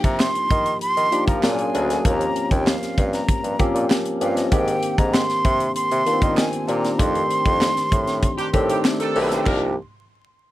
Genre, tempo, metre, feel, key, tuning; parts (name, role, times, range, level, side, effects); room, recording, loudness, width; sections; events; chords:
polished 1980s jazz-funk pop; 97 BPM; 4/4; straight; C minor; A4 = 440 Hz
breathy concert flute; melody; 0.0-8.8 s; Eb5 to C6; -24 LUFS; right 1 dB
barky tine electric piano; accompaniment; 0.0-9.7 s; Eb3 to Ab4; -23 LUFS; left 1 dB; analog chorus
clear bassoon; bass; 0.0-9.7 s; B1 to F3; -25 LUFS; equal
crisp fusion drum kit; drums; 0.0-9.6 s; crash cymbal, hi-hat, kick drum, snare drum; -22 LUFS; equal
group handclap; percussion; 0.2-9.7 s; -32 LUFS; right 8 dB
clear horn section; second line; 8.4-9.7 s; Eb3 to Bb4; -26 LUFS; right 2 dB
light reverb; vinyl crackle; -18 LUFS; side -15 dB against mid
0.0-9.5 A section; 9.5-10.5 B section
band accent 7.0-9.5
0.0 Cm11; 1.4 Bb7alt; 2.0 Eb13; 4.5 Abmaj9#11; 7.0 F13; 9.5 Cm11